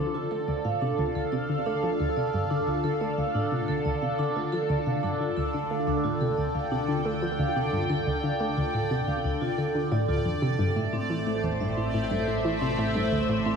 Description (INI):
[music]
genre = ambient, sequencer-driven space music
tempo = 89 BPM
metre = 4/4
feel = straight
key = D minor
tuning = A4 = 440 Hz
[part]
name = phased analog pad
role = sustained chords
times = 0.0-13.6 s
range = A2 to G5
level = -29 LUFS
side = equal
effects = phaser, chorus, shimmer reverb
[part]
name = vibraphone with soft mallets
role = arpeggios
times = 0.0-13.5 s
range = C4 to F5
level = -31 LUFS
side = right 2 dB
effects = auto-pan, tape echo, shimmer reverb
[part]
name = analog pluck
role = riff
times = 0.0-13.6 s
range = D2 to A3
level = -29 LUFS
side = left 1 dB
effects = chorus, tape echo
[part]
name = analog drone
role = bass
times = 1.4-13.6 s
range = A1 to D2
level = -43 LUFS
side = left 1 dB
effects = chorus
[part]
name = bubbling stepped-filter texture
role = texture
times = 0.3-13.6 s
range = D5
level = -38 LUFS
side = right 1 dB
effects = chorus, built-in reverb, shimmer reverb
[sound]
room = wet scoring stage reverb, RT60 2.0 s, digital ambience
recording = cassette tape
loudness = -25 LUFS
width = side -6 dB against mid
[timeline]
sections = 0.0-13.6 A section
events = fade-in on synth drone 0.0-13.6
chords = 0.0 Dm; 10.8 Am